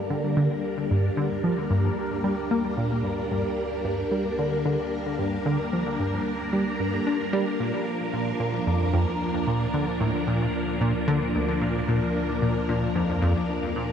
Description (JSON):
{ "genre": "ambient, sequencer-driven space music", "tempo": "112 BPM", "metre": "4/4", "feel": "straight", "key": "unclear", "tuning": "A4 = 440 Hz", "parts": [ { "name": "phased string machine", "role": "sustained chords", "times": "0.0-13.9 s", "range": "F3 to Bb4", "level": "-27 LUFS", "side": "equal", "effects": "ensemble chorus, phaser" }, { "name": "concert harp", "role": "arpeggios", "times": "0.0-13.9 s", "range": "D4 to D5", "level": "-42 LUFS", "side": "equal", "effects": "none" }, { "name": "tight sequenced synth", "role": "riff", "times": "0.0-13.9 s", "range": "D2 to D4", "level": "-26 LUFS", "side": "equal", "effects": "chorus, phaser, vintage 12-bit sampler grit, ping-pong delay" }, { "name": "round analog bass", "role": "bass", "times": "0.0-13.9 s", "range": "D2", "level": "-40 LUFS", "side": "equal", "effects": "none" } ], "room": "wet huge ambient reverb, RT60 8.2 s", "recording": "none", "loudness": "-23 LUFS", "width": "side -8 dB against mid", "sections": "0.0-13.9 A section", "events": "fade-in on analog synth bass 0.0-13.9", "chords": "0.0 Gm/D; 7.6 Bb/D", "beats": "0.10 0.64 | 1.17 1.71 2.24 2.78 | 3.31 3.85 4.39 4.92 | 5.46 5.99 6.53 7.06 | 7.60 8.14 8.67 9.21 | 9.74 10.28 10.81 11.35 | 11.89 12.42 12.96 13.49" }